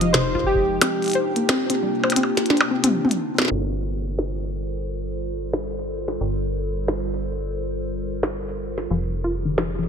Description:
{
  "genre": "IDM",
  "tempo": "89 BPM",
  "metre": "4/4",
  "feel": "swing 62% on 16ths",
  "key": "G minor",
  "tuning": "A4 = 439 Hz",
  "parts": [
    { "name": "warbly lo-fi synth keys", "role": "melody", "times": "0.0-3.1 s", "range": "G4 to Eb5", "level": "-25 LUFS", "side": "right 1 dB", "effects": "chorus, ping-pong delay" },
    { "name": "warbly tape-like pad", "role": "sustained chords", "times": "0.0-9.9 s", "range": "C3 to C5", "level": "-27 LUFS", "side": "equal", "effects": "chorus, built-in reverb" },
    { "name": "warbly dusty pluck", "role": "arpeggios", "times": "0.0-3.5, 8.9-9.8 s", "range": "C3 to C5", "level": "-24 LUFS", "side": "left 2 dB", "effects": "chorus, ping-pong delay" },
    { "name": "metallic FM bass", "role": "bass", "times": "0.0-9.9 s", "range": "F1 to G1", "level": "-29 LUFS", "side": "equal", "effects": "none" },
    { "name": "glitchy drum kit", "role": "drums", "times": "0.0-9.7 s", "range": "hi-hat, percussion blips, snare drum, toms", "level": "-23 LUFS", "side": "equal", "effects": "small room ambience" },
    { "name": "electronic kick drum", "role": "drums", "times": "0.3-0.7 s", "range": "none", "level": "-28 LUFS", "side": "equal", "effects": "small room ambience" }
  ],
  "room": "moderate echo chamber reverb, RT60 2.2 s",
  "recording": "low-pass filter",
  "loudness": "-21 LUFS",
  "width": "side -7 dB against mid",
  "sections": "0.0-3.5 A section; 3.5-9.9 B section",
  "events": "drum fill 2.5-3.5; band accent 3.3-3.7; filter sweep 3.5-9.9",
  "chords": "0.0 Fm11; 0.8 Cm11; 3.5 Gm11; 8.9 Fm11",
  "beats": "0.14 | 0.81 1.49 2.16 2.84 | 3.51 4.19 4.86 5.53 | 6.21 6.88 7.56 8.23 | 8.90 9.58"
}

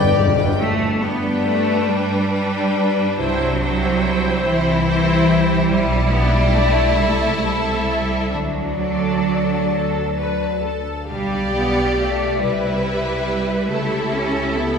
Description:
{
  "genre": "classical, slow romantic movement for symphony orchestra",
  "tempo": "42-49 BPM (dotted quarters)",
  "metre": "6/8",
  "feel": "rubato",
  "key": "G major",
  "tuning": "A4 = 440 Hz",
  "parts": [
    { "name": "clear symphonic violin section", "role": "melody", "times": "0.0-14.8 s", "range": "E5 to A5", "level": "-33 LUFS", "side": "left 3 dB", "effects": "none" },
    { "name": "clear symphonic violin section", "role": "second line", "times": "0.0-14.8 s", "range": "D4 to G5", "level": "-25 LUFS", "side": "left 1 dB", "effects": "none" },
    { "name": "concert harp", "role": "arpeggios", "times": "0.0-14.8 s", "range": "G2 to E6", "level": "-25 LUFS", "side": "left 7 dB", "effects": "none" },
    { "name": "rich symphonic cello section", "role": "bass", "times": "0.0-14.8 s", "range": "G2 to C#4", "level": "-21 LUFS", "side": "right 2 dB", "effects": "none" },
    { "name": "rich symphonic double bass section", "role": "bass", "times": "0.0-14.8 s", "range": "G1 to G2", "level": "-25 LUFS", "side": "right 2 dB", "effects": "none" },
    { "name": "timpani", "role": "percussion", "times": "0.0-0.5 s", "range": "G2", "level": "-22 LUFS", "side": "equal", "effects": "none" },
    { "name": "rich symphonic viola section", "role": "accompaniment", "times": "1.0-14.8 s", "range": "D4 to E5", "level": "-23 LUFS", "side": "right 1 dB", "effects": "none" }
  ],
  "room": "wet concert hall reverb, RT60 2.0 s",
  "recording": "recorded in a church or concert hall",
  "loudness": "-16 LUFS",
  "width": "side -6 dB against mid",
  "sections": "0.6-14.8 A section",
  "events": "timpani fill 0.0-0.6",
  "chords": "0.0 G; 3.2 C; 5.7 G/B; 7.0 Am7/C; 8.3 D; 11.1 G7/B; 12.4 Cmaj7; 13.7 A7/C#",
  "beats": "| 0.56 1.88 | 3.18 4.45 | 5.69 6.98 | 8.33 9.72 | 11.09 12.42 | 13.70"
}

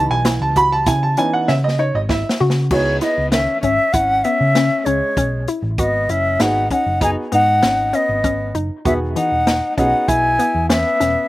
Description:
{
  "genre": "progressive instrumental, band music in an uneven meter",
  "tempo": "98 BPM",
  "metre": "5/4",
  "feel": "straight",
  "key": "C# minor",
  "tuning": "A4 = 438 Hz",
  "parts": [
    { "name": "clear grand piano", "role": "accompaniment", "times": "0.0-10.6 s", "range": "D#3 to B5", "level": "-20 LUFS", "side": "right 2 dB", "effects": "slapback echo" },
    { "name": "hollow square pluck", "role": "arpeggios", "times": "0.0-11.2 s", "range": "D#3 to F#4", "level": "-24 LUFS", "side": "left 2 dB", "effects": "chorus, phaser, slapback echo" },
    { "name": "hollow-body short-scale picked electric bass", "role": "bass", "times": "0.0-11.1 s", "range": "E1 to C#3", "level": "-21 LUFS", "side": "equal", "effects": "none" },
    { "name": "open jazz drum kit", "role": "drums", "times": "0.2-11.1 s", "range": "crash cymbal, hi-hat, kick drum, snare drum", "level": "-22 LUFS", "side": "equal", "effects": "none" },
    { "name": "mellow silver concert flute", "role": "melody", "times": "2.7-11.3 s", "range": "C#5 to G#5", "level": "-17 LUFS", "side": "equal", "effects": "none" },
    { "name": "warm alto saxophone", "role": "second line", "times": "2.7-11.3 s", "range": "G#3 to E4", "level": "-26 LUFS", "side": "left 2 dB", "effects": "slapback echo" }
  ],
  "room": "little or no reverb",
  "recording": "recorded outdoors, with no room sound",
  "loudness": "-15 LUFS",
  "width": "side -16 dB against mid",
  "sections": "0.0-2.7 A section; 2.7-11.3 B section",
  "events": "grand piano solo 0.0-2.7; drum fill 1.5-2.7",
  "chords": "0.0 C#m7; 5.8 G#m7; 8.9 Emaj7",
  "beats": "0.26 0.87 1.48 2.10 | 2.71 3.33 3.94 4.55 5.17 | 5.78 6.40 7.01 7.63 8.24 | 8.86 9.47 10.09 10.70"
}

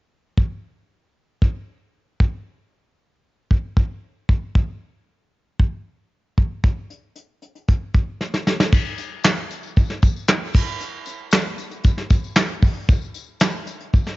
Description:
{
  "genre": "pop",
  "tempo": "115 BPM",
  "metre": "4/4",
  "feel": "straight",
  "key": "none",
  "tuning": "none",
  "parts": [
    { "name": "soft brush drum kit", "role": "drums", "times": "0.4-14.1 s", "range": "crash cymbal, handclaps, hi-hat, kick drum, snare drum", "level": "-18 LUFS", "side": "equal", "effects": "cassette tape" },
    { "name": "tambourine", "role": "percussion", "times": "8.7-14.1 s", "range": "none", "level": "-39 LUFS", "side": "left 11 dB", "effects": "none" }
  ],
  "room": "small room reverb",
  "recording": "home recording on cassette, nothing above 7.5 kHz",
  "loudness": "-19 LUFS",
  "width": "side -20 dB against mid",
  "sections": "0.4-8.7 A section; 8.7-14.2 B section",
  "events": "drum fill 8.2-8.7",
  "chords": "none",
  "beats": "| 0.38 0.90 1.42 1.95 | 2.47 2.99 3.51 4.03 | 4.55 5.08 5.60 6.12 | 6.64 7.16 7.68 8.20 | 8.72 9.24 9.77 10.29 | 10.81 11.33 11.85 12.37 | 12.89 13.41 13.93"
}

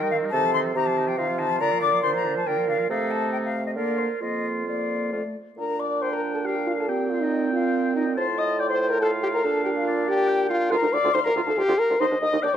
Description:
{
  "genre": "quick classical-period movement for wind quintet",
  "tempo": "140 BPM",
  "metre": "3/4",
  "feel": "rubato",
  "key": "Bb major",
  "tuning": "A4 = 437 Hz",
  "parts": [
    { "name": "concert flute", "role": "melody", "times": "0.0-12.6 s", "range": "C5 to Eb6", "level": "-28 LUFS", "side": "left 8 dB", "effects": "none" },
    { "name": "clear oboe", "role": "second line", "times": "0.0-12.6 s", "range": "C4 to A5", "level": "-32 LUFS", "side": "left 4 dB", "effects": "none" },
    { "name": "mellow French horn", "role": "accompaniment", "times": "0.0-12.6 s", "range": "D3 to Eb5", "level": "-26 LUFS", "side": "left 1 dB", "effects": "none" },
    { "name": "warm clarinet", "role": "accompaniment", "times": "0.0-12.6 s", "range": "C4 to D5", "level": "-29 LUFS", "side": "right 7 dB", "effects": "none" },
    { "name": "mellow bassoon", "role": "bass", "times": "0.0-12.6 s", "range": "D2 to Eb3", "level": "-28 LUFS", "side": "right 2 dB", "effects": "none" }
  ],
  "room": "moderate recital hall reverb, RT60 1.7 s",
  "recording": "close, detailed microphones",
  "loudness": "-21 LUFS",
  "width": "side -9 dB against mid",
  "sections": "0.0-5.6 A section; 5.6-12.6 B section",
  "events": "none",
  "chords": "0.3 F7/C; 1.6 Bb; 2.9 Cm6; 3.8 Bb/D; 4.2 Bb/F; 5.1 F; 5.6 Bb; 6.9 C5/Bb; 8.2 F/A; 9.4 Bb; 10.7 Ebmaj9/D (rootless); 12.0 Cmadd9/Eb",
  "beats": "| 0.33 0.76 1.19 | 1.61 2.04 2.47 | 2.90 3.33 3.77 | 4.21 4.67 5.12 | 5.58 6.01 6.45 | 6.88 7.31 7.74 | 8.17 8.59 9.02 | 9.44 9.87 10.29 | 10.71 11.14 11.57 | 12.00 12.42"
}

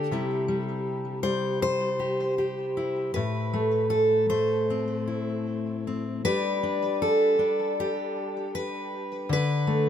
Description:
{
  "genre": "folk, solo fingerstyle acoustic guitar",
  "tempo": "78 BPM",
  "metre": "4/4",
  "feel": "rubato",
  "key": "A minor",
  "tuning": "A4 = 439 Hz",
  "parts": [
    { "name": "fingerpicked steel-string acoustic guitar", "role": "solo", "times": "0.0-9.9 s", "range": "A2 to C5", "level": "-24 LUFS", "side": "left 1 dB", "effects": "tape echo" }
  ],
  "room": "light reverb",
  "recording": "close, detailed microphones",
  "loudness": "-24 LUFS",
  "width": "side -9 dB against mid",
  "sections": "0.0-9.9 A section",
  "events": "none",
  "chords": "0.1 C; 3.2 Am; 6.2 G; 9.3 D5",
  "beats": "| 0.11 0.86 1.61 2.38 | 3.15 3.92 4.69 5.47 | 6.25 7.02 7.78 8.54 | 9.30"
}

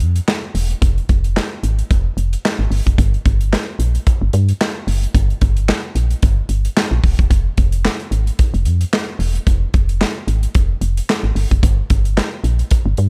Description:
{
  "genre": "early-eighties boogie funk",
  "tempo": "111 BPM",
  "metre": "4/4",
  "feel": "swing 56% on 16ths",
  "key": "unclear",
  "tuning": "A4 = 441 Hz",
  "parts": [
    { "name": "woody FM bass", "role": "bass", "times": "0.0-13.1 s", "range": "Eb1 to G2", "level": "-18 LUFS", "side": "equal", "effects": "none" },
    { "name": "modern studio drum kit", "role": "drums", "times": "0.0-13.1 s", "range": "handclaps, hi-hat, kick drum, snare drum", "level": "-19 LUFS", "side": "equal", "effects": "none" }
  ],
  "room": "little or no reverb",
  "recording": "none",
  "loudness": "-17 LUFS",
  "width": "mono",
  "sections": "0.0-13.1 A section",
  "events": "none",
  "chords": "none",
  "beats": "0.28 | 0.82 1.36 1.90 2.44 | 2.98 3.52 4.06 4.60 | 5.14 5.68 6.22 6.77 | 7.31 7.85 8.39 8.93 | 9.47 10.01 10.55 11.09 | 11.63 12.17 12.71"
}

